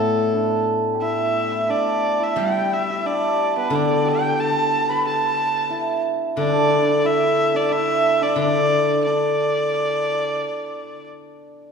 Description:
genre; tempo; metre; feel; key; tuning
chinese traditional, Chinese chamber ensemble; 89 BPM; 4/4; rubato; D zhi mode; A4 = 440 Hz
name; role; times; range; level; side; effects
rich erhu; melody; 0.0-11.1 s; A4 to B5; -22 LUFS; left 2 dB; none
hammered dulcimer; second line; 0.0-11.7 s; A3 to B4; -23 LUFS; right 4 dB; none
steel-string zither; accompaniment; 0.0-10.4 s; A2 to G3; -23 LUFS; left 1 dB; none
room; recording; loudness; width
wet recital hall reverb, RT60 1.6 s; recorded in a church or concert hall; -18 LUFS; side -6 dB against mid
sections
0.0-11.7 A section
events
none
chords
none

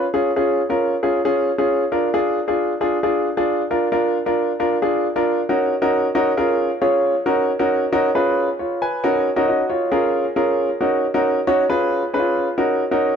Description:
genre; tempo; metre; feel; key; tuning
soul; 135 BPM; 4/4; straight; Eb minor; A4 = 441 Hz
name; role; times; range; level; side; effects
warm upright piano; solo; 0.0-13.2 s; Db4 to Ab5; -17 LUFS; equal; analog delay
room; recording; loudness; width
moderate echo chamber reverb, RT60 1.9 s; none; -17 LUFS; side -7 dB against mid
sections
0.0-5.5 A section; 5.5-13.2 B section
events
none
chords
0.0 Db; 1.9 Bb; 5.5 Ebm7; 6.4 Bbm7; 7.3 Ebm7; 8.1 Db7; 9.0 Ebm7; 9.9 Bbm7; 10.8 Ebm7; 11.7 Db7; 12.6 Ebm7

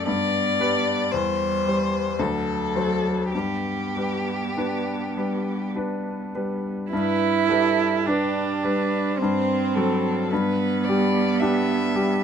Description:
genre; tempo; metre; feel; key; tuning
classical, slow romantic movement for piano trio; 49-58 BPM; 3/4; rubato; G major; A4 = 440 Hz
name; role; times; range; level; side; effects
rich violin; melody; 0.0-12.2 s; G4 to E5; -27 LUFS; left 5 dB; none
warm cello; second line; 0.0-12.2 s; F#3 to E4; -25 LUFS; right 8 dB; none
bright baby grand piano; accompaniment; 0.0-12.2 s; D2 to C5; -25 LUFS; left 2 dB; none
room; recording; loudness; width
light reverb; close, detailed microphones; -21 LUFS; side -8 dB against mid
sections
0.0-6.9 A section; 6.9-12.2 A section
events
none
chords
0.1 G; 1.1 C/E; 2.2 D7; 3.3 G; 9.2 Gsus24; 10.3 G

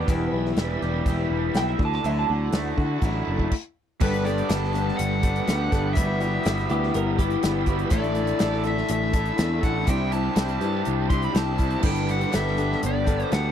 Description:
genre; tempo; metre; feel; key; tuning
folk rock and heartland rock; 122 BPM; 4/4; straight; G major; A4 = 439 Hz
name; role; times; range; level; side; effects
twelve-string electric guitar; second line; 0.0-3.3, 6.7-7.8 s; G4 to A5; -31 LUFS; right 4 dB; none
picked steel-string acoustic guitar; accompaniment; 0.0-13.5 s; E2 to A4; -30 LUFS; left 7 dB; none
tonewheel organ; sustained chords; 0.0-13.5 s; D4 to E5; -36 LUFS; right 2 dB; slow rotary speaker, overdrive, chorus vibrato
raw garage guitar; riff; 0.0-13.5 s; E2 to A4; -28 LUFS; right 2 dB; overdrive
picked electric bass; bass; 0.0-13.5 s; E1 to D3; -26 LUFS; equal; none
natural country drum kit; drums; 0.1-13.4 s; crash cymbal, hi-hat, kick drum, snare drum; -25 LUFS; equal; none
dark smooth lead guitar; melody; 4.0-13.5 s; B4 to C6; -30 LUFS; left 2 dB; overdrive, tape echo
room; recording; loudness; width
little or no reverb; dry, close 1970s-style studio recording; -21 LUFS; side -9 dB against mid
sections
0.0-4.0 A section; 4.0-13.5 B section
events
clean electric guitar solo 0.0-4.0; stop 3.5-4.0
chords
0.1 Em; 1.8 Dadd9; 4.0 Gadd9; 6.0 Emadd9/G; 7.9 Asus4; 9.9 Cadd9; 11.8 Gadd9

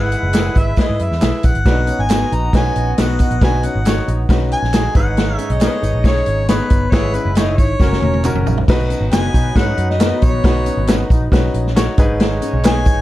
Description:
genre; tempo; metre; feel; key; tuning
uptempo 1960s-style soul; 137 BPM; 4/4; straight; B major; A4 = 440 Hz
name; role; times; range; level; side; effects
mellow harmonica; melody; 0.0-13.0 s; B4 to A#5; -22 LUFS; left 1 dB; none
warm horn section; second line; 0.0-13.0 s; F#3 to D#5; -28 LUFS; right 3 dB; none
bright grand piano; accompaniment; 0.0-13.0 s; G#2 to C#5; -23 LUFS; left 1 dB; none
vintage muted picked electric bass; bass; 0.0-13.0 s; E1 to B2; -19 LUFS; equal; none
swinging big-band drum kit; drums; 0.1-13.0 s; crash cymbal, hi-hat, kick drum, snare drum, toms; -16 LUFS; equal; none
tambourine and handclaps; percussion; 0.1-13.0 s; none; -34 LUFS; right 5 dB; none
mellow electric guitar; riff; 1.9-13.0 s; B3 to D#4; -26 LUFS; left 4 dB; wide subtle chorus
room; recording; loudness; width
little or no reverb; dark, warm production; -13 LUFS; side -15 dB against mid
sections
0.0-8.7 A section; 8.7-13.0 B section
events
drum fill 7.8-8.7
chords
0.0 E; 1.7 B; 5.0 G#m; 6.9 E; 7.8 F#; 8.7 B; 12.0 G#m

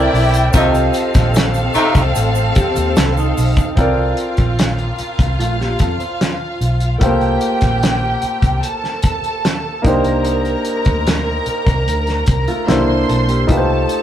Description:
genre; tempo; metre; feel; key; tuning
lush 1970s-style soul; 74 BPM; 4/4; straight; C dorian; A4 = 440 Hz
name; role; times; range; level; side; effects
warm studio violin section; second line; 0.0-14.0 s; C4 to C6; -21 LUFS; equal; none
clear baby grand piano; accompaniment; 0.0-14.0 s; A3 to Eb5; -20 LUFS; equal; none
vintage muted fingered electric bass; bass; 0.0-13.8 s; A1 to F2; -18 LUFS; equal; none
warm soul drum kit; drums; 0.1-14.0 s; hi-hat, kick drum, snare drum; -17 LUFS; equal; none
egg shaker; percussion; 0.3-3.8 s; none; -34 LUFS; right 3 dB; none
warm horn section; stabs; 0.5-2.0 s; C3 to Eb4; -17 LUFS; equal; none
mellow electric guitar; riff; 2.6-7.0, 12.5-13.7 s; A3 to C5; -24 LUFS; right 1 dB; none
room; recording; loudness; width
moderate small room reverb, RT60 0.5 s; rough rehearsal-room recording; -13 LUFS; side -10 dB against mid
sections
0.0-3.8 A section; 3.8-14.0 B section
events
band accent 0.5-3.8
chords
0.0 C13; 0.5 F9; 3.8 Bbmaj9; 7.0 Gm11; 9.8 Cm9; 12.7 C13; 13.5 F9

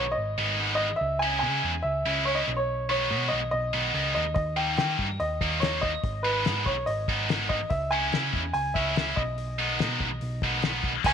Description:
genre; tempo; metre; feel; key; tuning
indie rock; 144 BPM; 4/4; straight; G# harmonic minor; A4 = 438 Hz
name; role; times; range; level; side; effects
clear upright piano; melody; 0.0-11.1 s; B4 to G#5; -28 LUFS; equal; none
high-gain distorted guitar; riff; 0.0-11.1 s; C#3 to E4; -28 LUFS; equal; distortion
hollow-body short-scale picked electric bass; bass; 0.0-11.1 s; G#1 to D#3; -32 LUFS; right 1 dB; none
cloth-damped thuddy drum kit; drums; 4.4-11.1 s; crash cymbal, hi-hat, kick drum, snare drum; -30 LUFS; left 3 dB; none
room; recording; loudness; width
light reverb, studio ambience; 1960s-style stereo; -24 LUFS; side -7 dB against mid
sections
0.0-11.1 A section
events
none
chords
0.0 G#m; 1.0 C#m; 2.5 G#m/B; 4.4 D#; 6.0 G#m; 7.7 C#m; 9.2 G#m/B

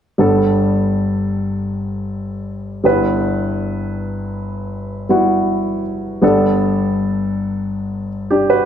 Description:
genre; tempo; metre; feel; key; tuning
pop; 80 BPM; 4/4; straight; G major; A4 = 441 Hz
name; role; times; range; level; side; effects
warm concert grand piano; accompaniment; 0.2-8.7 s; G1 to B4; -16 LUFS; equal; none
room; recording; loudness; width
wet recital hall reverb, RT60 1.5 s; none; -16 LUFS; side -9 dB against mid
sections
0.2-8.7 A section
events
none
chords
0.2 Gadd9; 2.8 Em/G; 6.2 Gadd9

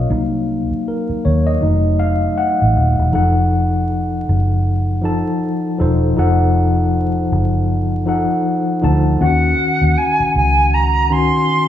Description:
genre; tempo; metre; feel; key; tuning
R&B, neo-soul; 79 BPM; 4/4; swing 59% on 16ths; unclear; A4 = 439 Hz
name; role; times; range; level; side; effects
mellow tine electric piano; accompaniment; 0.0-11.7 s; Eb3 to A5; -17 LUFS; left 2 dB; medium stereo tremolo
vintage muted fingered electric bass; bass; 0.0-11.3 s; Eb1 to Eb2; -16 LUFS; equal; none
silver concert flute; melody; 9.2-11.7 s; Gb5 to C6; -16 LUFS; right 2 dB; none
room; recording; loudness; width
light reverb, studio reverb; vinyl crackle; -14 LUFS; side -11 dB against mid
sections
0.0-3.1 A section; 3.1-9.2 B section; 9.2-11.7 C section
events
tine electric piano solo 0.0-3.1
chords
0.1 Cm7b5; 1.6 F7b9; 9.2 Ebm7

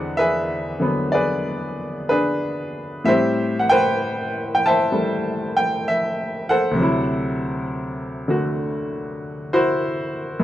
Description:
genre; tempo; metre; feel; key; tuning
solo jazz; 65 BPM; 4/4; swing 67% on 8ths, rubato; unclear; A4 = 440 Hz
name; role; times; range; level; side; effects
bright upright piano; solo; 0.0-10.4 s; D2 to A5; -19 LUFS; equal; none
room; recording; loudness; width
light reverb; dry, close 1970s-style studio recording; -19 LUFS; side -13 dB against mid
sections
0.0-10.4 A section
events
none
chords
0.0 E7b13; 3.1 Am9; 6.8 D9

